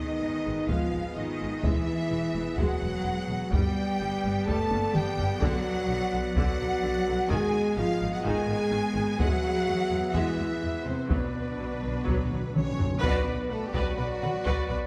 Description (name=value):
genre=cinematic, epic orchestral film score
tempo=127 BPM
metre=4/4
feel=straight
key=unclear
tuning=A4 = 440 Hz
part: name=clear symphonic violin section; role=melody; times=0.0-14.9 s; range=F#4 to A5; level=-39 LUFS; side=equal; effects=none
part: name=rich studio violin section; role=second line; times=0.0-14.8 s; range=F#4 to B5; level=-40 LUFS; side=equal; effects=none
part: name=clear symphonic viola section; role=accompaniment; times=0.0-14.8 s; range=D3 to B4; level=-39 LUFS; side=equal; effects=none
part: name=dark French horn section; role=sustained chords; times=0.0-14.9 s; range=F#3 to A4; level=-34 LUFS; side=equal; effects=none
part: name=dark woodwind section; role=sustained chords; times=0.0-14.9 s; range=B3 to E5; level=-40 LUFS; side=equal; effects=none
part: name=clear symphonic cello section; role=bass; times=0.0-14.8 s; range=B2 to A3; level=-36 LUFS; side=equal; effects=none
part: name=rich studio double bass section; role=bass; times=0.2-14.8 s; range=E1 to E2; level=-37 LUFS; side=equal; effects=none
part: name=taiko ensemble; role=drums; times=0.7-14.9 s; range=none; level=-33 LUFS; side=equal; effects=none
part: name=timpani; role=percussion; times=5.4-6.1, 11.1-13.7 s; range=B2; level=-39 LUFS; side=equal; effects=none
part: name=mellow large flute ensemble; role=second line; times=12.6-14.9 s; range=F#4 to C#5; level=-41 LUFS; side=equal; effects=none
room=wet scoring stage reverb, RT60 1.9 s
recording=none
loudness=-28 LUFS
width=mono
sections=0.0-13.0 A section; 13.0-14.9 B section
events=drum fill 4.7-5.4, 12.3-13.0; timpani fill 11.1-13.0; band accent 13.0-13.5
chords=0.0 G#m; 1.6 E; 3.5 G; 5.4 Bm; 7.3 G#m; 9.2 E; 11.1 Bm